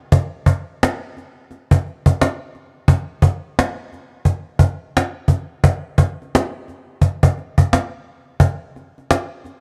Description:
R&B; 87 BPM; 4/4; swing 63% on 16ths
cajon; drums; 0.1-9.6 s; -16 LUFS; equal
small room reverb; dry, close 1970s-style studio recording; -19 LUFS; mono
0.0-8.4 A section; 8.4-9.6 B section
| 0.12 0.81 1.50 2.19 | 2.88 3.56 4.25 4.95 | 5.63 6.32 7.01 7.70 | 8.39 9.08

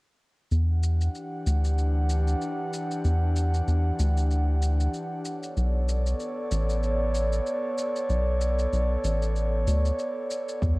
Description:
sunset chillout; 95 BPM; 4/4; swing 57% on 16ths; B minor; A4 = 439 Hz
airy breathy pad; sustained chords; 0.7-10.8 s; E3 to F#5; -30 LUFS; equal; chorus, cassette tape
round analog bass; bass; 0.5-10.8 s; A1 to E2; -23 LUFS; equal
shaker; drums; 0.5-10.8 s; -41 LUFS; left 1 dB; overdrive, cassette tape
electronic kick drum; drums; 10.6-10.8 s; -27 LUFS; equal; overdrive, cassette tape
light reverb; home recording on cassette; -24 LUFS; side -23 dB against mid
0.5-10.8 A section
filter sweep on analog synth bass 0.5-10.8
0.5 Em9; 5.3 Bm9
| 0.52 1.15 1.78 2.41 | 3.04 3.67 4.31 4.94 | 5.57 6.20 6.83 7.46 | 8.10 8.73 9.36 9.99 | 10.62

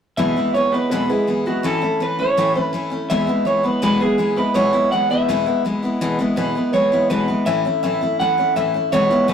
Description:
rock; 165 BPM; 4/4; straight; E major; A4 = 440 Hz
electric guitar through a small old amp; melody; 0.2-9.3 s; F#4 to F#5; -19 LUFS; right 1 dB
picked steel-string acoustic guitar; accompaniment; 0.2-9.3 s; E2 to E4; -20 LUFS; left 1 dB
wet small room reverb, RT60 0.6 s; rough rehearsal-room recording, tube saturation; -16 LUFS; side -8 dB against mid
0.2-6.0 A section; 6.0-9.3 B section
0.2 E; 1.6 A; 3.1 E; 7.5 A
| 0.18 0.55 0.91 1.28 | 1.64 2.01 2.37 2.74 | 3.10 3.46 3.83 4.19 | 4.56 4.92 5.29 5.65 | 6.01 6.38 6.74 7.11 | 7.47 7.83 8.20 8.56 | 8.93 9.29

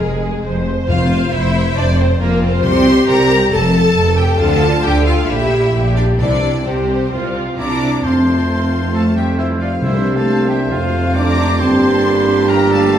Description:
classical; 135 BPM; 4/4; straight; F major; A4 = 441 Hz
rich symphonic violin section; melody; 0.0-13.0 s; Ab4 to D6; -23 LUFS; left 3 dB
clear symphonic violin section; second line; 0.0-13.0 s; Ab3 to Bb5; -23 LUFS; left 3 dB
rich symphonic viola section; accompaniment; 0.0-13.0 s; A3 to C5; -21 LUFS; right 2 dB
rich symphonic cello section; bass; 0.0-13.0 s; F2 to D4; -18 LUFS; equal
rich symphonic double bass section; bass; 0.0-13.0 s; F1 to G2; -19 LUFS; right 1 dB
timpani; percussion; 0.9-3.3, 6.2-10.5 s; F2 to C3; -23 LUFS; left 1 dB
bright oboe; second line; 7.6-13.0 s; E4 to D5; -26 LUFS; equal
mellow hollow silver concert flute; second line; 7.6-13.0 s; E5 to D6; -26 LUFS; left 1 dB
bright trombone section; sustained chords; 8.0-13.0 s; C3 to Bb3; -22 LUFS; right 2 dB
warm trumpet; stabs; 8.0-13.0 s; G4 to C5; -21 LUFS; right 3 dB
mellow French horn section; sustained chords; 8.1-13.0 s; Bb3 to G4; -22 LUFS; left 2 dB
mellow tuba; bass; 8.1-13.0 s; F1 to C2; -22 LUFS; right 2 dB
wet recital hall reverb, RT60 1.5 s; heard from further back in the room; -12 LUFS; side -10 dB against mid
0.0-8.1 A section; 8.1-13.0 B section
0.0 F5; 2.6 C5; 3.5 F; 4.4 Dm; 5.3 Gm/Bb; 6.2 C; 8.1 F; 9.8 C9; 10.7 F; 11.6 Gm
0.01 0.45 | 0.89 1.33 1.77 2.20 | 2.64 3.08 3.52 3.96 | 4.40 4.84 5.29 5.74 | 6.20 6.66 7.13 7.59 | 8.05 8.50 8.95 9.39 | 9.84 10.28 10.72 11.17 | 11.61 12.06 12.50 12.94

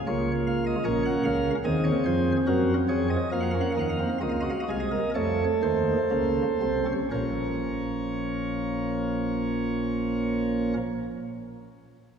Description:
classical, baroque-style 4-part fugue for pipe organ; 57-77 BPM; 4/4; straight; Bb minor; A4 = 443 Hz
chamber organ, sparkling flutes; solo; 0.1-10.8 s; Bb1 to Gb5; -24 LUFS; right 1 dB
wet church reverb, RT60 2.8 s; studio ambience; -24 LUFS; side -7 dB against mid
0.0-7.1 A section; 7.1-11.3 B section
slowing down 0.0-7.1
0.1 Bbm/Db; 1.7 Cm7b5/Eb; 3.3 F7sus4; 5.1 F7; 7.1 Bbm
| 0.08 0.87 1.67 2.50 | 3.34 4.22 5.14 6.11 | 7.13 8.18 9.23 10.28

